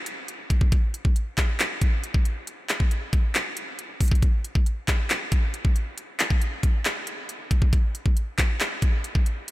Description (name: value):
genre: hip hop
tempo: 137 BPM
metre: 4/4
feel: half-time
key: none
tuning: none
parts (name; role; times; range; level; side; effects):
- trap drum kit; drums; 0.1-9.5 s; handclaps, hi-hat, kick drum; -22 LUFS; equal; none
room: light reverb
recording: none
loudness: -22 LUFS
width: side -18 dB against mid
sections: 0.0-9.5 A section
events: none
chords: none